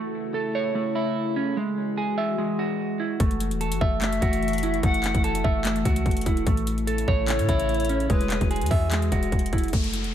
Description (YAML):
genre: hip hop, trap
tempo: 147 BPM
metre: 4/4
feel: half-time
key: unclear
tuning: A4 = 440 Hz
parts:
  - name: warbly tape-like pad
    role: sustained chords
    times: 0.0-9.7 s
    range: C#3 to F#4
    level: -31 LUFS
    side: left 4 dB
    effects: chorus, built-in reverb, phaser
  - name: semi-hollow electric guitar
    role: arpeggios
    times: 0.0-10.1 s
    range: G#3 to E5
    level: -26 LUFS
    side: right 4 dB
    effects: low-pass filter, ping-pong delay
  - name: warm 808-style bass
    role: bass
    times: 3.2-10.1 s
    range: E1 to A2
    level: -27 LUFS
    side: left 1 dB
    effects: none
  - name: trap drum kit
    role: drums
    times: 3.2-10.1 s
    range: handclaps, hi-hat, kick drum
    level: -25 LUFS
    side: left 1 dB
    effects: none
  - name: polished pan flute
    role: second line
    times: 4.0-8.5 s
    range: B4 to F#5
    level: -30 LUFS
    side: left 6 dB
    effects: ping-pong delay
  - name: downlifter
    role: sound effects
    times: 9.7-10.1 s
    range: none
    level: -31 LUFS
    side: left 2 dB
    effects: none
room: light reverb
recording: none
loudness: -22 LUFS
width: side -10 dB against mid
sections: 0.0-9.7 A section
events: none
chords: 0.0 A; 1.6 Eadd9; 3.2 F#m7; 6.5 A; 8.1 Eadd9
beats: 0.34 0.75 1.16 | 1.57 1.98 2.38 2.79 | 3.20 3.61 4.02 4.42 | 4.83 5.24 5.65 6.06 | 6.47 6.87 7.28 7.69 | 8.10 8.51 8.91 9.32 | 9.73 10.14